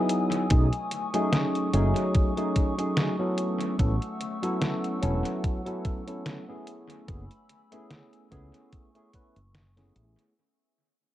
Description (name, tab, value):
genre	vaporwave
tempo	73 BPM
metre	4/4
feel	swing 55% on 16ths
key	unclear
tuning	A4 = 440 Hz
part	tine electric piano	accompaniment	0.0-10.3 s	F#3 to B4	-28 LUFS	equal	analog chorus, analog delay
part	warbly tape-like pad	sustained chords	0.0-10.3 s	A3 to E6	-36 LUFS	left 2 dB	chorus, built-in reverb
part	detuned 8-bit digital drum machine	drums	0.1-10.3 s	hi-hat, snare drum	-32 LUFS	equal	studio reverb, analog delay
part	woody fretless electric bass	bass	0.5-10.1 s	E1 to C#2	-25 LUFS	equal	tube saturation
part	electronic kick drum	drums	0.5-9.3 s	none	-25 LUFS	equal	studio reverb
room	light reverb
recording	echo-heavy mix, cassette tape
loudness	-24 LUFS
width	side -13 dB against mid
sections	0.0-10.4 A section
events	fade-out 0.0-10.4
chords	0.0 Emaj7; 0.5 B13; 3.4 A6; 6.7 F#m11